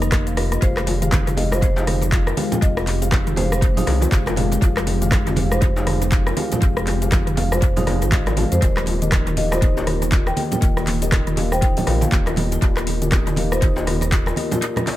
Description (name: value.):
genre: afro house.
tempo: 120 BPM.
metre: 4/4.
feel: swing 59% on 16ths.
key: F minor.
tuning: A4 = 439 Hz.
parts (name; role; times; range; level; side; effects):
ethereal airy pad; sustained chords; 0.0-15.0 s; Eb3 to G4; -30 LUFS; left 1 dB; ensemble chorus, built-in reverb, sidechain pumping.
marimba with medium mallets; arpeggios; 0.0-14.9 s; Eb4 to F5; -29 LUFS; right 1 dB; sidechain pumping, tape echo.
round analog bass; bass; 0.0-14.3 s; Eb1 to F2; -23 LUFS; equal; tube saturation, sidechain pumping.
afro-pop drum kit; drums; 0.0-15.0 s; cabasa, handclaps, hi-hat, rim click, toms; -25 LUFS; left 1 dB; analog delay.
felt-muted upright piano; stabs; 0.1-15.0 s; Ab3 to F5; -28 LUFS; left 3 dB; sidechain pumping, analog delay.
electronic kick drum; drums; 0.1-14.2 s; none; -18 LUFS; equal; none.
marimba with medium hard mallets; melody; 0.6-3.8, 8.6-12.1 s; C5 to G5; -30 LUFS; left 1 dB; tape echo.
djembe; percussion; 0.6-15.0 s; none; -32 LUFS; left 3 dB; analog delay.
congas; percussion; 0.9-15.0 s; none; -27 LUFS; right 3 dB; analog delay.
room: light reverb, small room ambience.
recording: echo-heavy mix.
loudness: -17 LUFS.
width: side -14 dB against mid.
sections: 0.0-15.0 A section.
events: drum fill 0.0-0.6.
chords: 0.0 Eb; 0.6 Fmadd9; 8.6 Eb.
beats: 0.12 | 0.62 1.12 1.62 2.12 | 2.62 3.12 3.62 4.12 | 4.62 5.12 5.62 6.12 | 6.62 7.12 7.62 8.12 | 8.62 9.12 9.62 10.12 | 10.62 11.12 11.62 12.12 | 12.62 13.12 13.62 14.12 | 14.62.